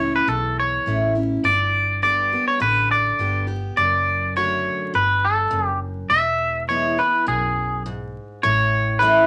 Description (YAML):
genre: honky-tonk and classic country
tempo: 103 BPM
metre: 4/4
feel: straight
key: A mixolydian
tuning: A4 = 440 Hz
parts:
  - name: twangy electric guitar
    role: melody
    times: 0.0-9.3 s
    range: G#4 to E5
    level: -21 LUFS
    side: equal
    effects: none
  - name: picked steel-string acoustic guitar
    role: accompaniment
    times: 0.0-9.3 s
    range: E2 to G4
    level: -28 LUFS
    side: equal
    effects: none
  - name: vintage muted fingered electric bass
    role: bass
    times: 0.0-9.3 s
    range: E1 to C#2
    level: -29 LUFS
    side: equal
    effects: none
room: moderate studio reverb, RT60 0.5 s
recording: vinyl crackle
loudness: -20 LUFS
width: mono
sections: 0.0-8.4 A section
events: none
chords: 0.0 A; 1.4 G; 3.8 D/F#; 6.1 E; 8.4 A